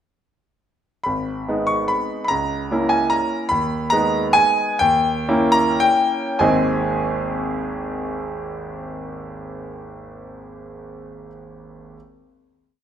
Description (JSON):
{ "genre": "classical, piano waltz", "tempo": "95-156 BPM", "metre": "3/4", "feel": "rubato", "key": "unclear", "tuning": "A4 = 442 Hz", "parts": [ { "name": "bright concert grand piano", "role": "solo", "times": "1.0-12.0 s", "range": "G#1 to C#6", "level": "-19 LUFS", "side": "equal", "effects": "none" } ], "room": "moderate recital hall reverb, RT60 1.6 s", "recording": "none", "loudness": "-18 LUFS", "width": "side -9 dB against mid", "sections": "1.1-6.4 A section; 6.4-9.9 final chord", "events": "slowing down 2.9-6.4", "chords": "1.1 G#m; 2.3 A#dim/C#; 3.5 G#m/D#; 4.8 D#7b9; 6.4 G#" }